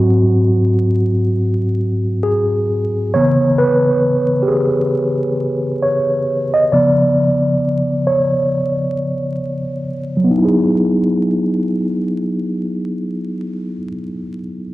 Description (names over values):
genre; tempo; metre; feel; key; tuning
hip hop; 67 BPM; 4/4; swing 60% on 16ths; E major; A4 = 438 Hz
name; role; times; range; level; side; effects
mellow tine electric piano; accompaniment; 0.0-14.7 s; G#2 to D#5; -14 LUFS; equal; medium stereo tremolo, low-pass filter
room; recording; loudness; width
moderate small room reverb, RT60 0.5 s; worn, warbling old tape, cassette tape, vinyl crackle, warbly pitch drift; -14 LUFS; side -17 dB against mid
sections
0.0-10.3 A section; 10.3-13.9 B section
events
tine electric piano solo 0.0-10.3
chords
0.0 G#7; 3.1 C#m7; 6.7 C#7b9; 10.3 Emaj9